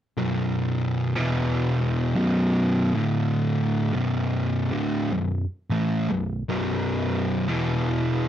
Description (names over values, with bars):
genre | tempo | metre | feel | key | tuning
metal | 76 BPM | 4/4 | straight | B minor | A4 = 439 Hz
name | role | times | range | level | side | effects
fuzz guitar | solo | 0.2-8.3 s | B1 to A3 | -22 LUFS | equal | distortion
room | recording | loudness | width
moderate studio reverb, RT60 0.6 s | none | -22 LUFS | side -10 dB against mid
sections
0.2-8.3 A section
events
none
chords
0.2 B5; 1.2 E5; 2.1 B5; 2.9 D5; 3.9 Bm; 7.5 E5